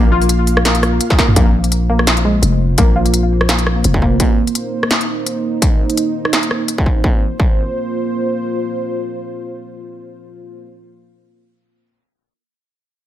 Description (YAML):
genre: half-time drum and bass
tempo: 169 BPM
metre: 4/4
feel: swing 55% on 16ths, half-time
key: unclear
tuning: A4 = 441 Hz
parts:
  - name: dark analog pad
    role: sustained chords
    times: 0.0-10.6 s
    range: Bb3 to F5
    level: -21 LUFS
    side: right 2 dB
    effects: chorus, vintage 12-bit sampler grit, sidechain pumping
  - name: warbly dusty pluck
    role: arpeggios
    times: 0.0-4.1 s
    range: Ab3 to F4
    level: -20 LUFS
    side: left 2 dB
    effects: chorus, ping-pong delay
  - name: growling 808-style bass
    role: bass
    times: 0.0-4.2 s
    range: F1 to Bb1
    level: -15 LUFS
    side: equal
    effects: tube saturation
  - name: industrial drum kit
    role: drums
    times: 0.2-6.8 s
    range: hi-hat, rim click, snare drum, toms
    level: -16 LUFS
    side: equal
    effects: studio reverb
  - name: electronic kick drum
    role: drums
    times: 1.1-7.5 s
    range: none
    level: -14 LUFS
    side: equal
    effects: distortion, studio reverb
room: light reverb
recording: none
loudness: -13 LUFS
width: side -12 dB against mid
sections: 0.0-1.4 A section; 1.4-7.0 B section; 7.0-9.9 C section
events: drop 0.0-1.4; drum fill 1.1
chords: 0.0 Bb5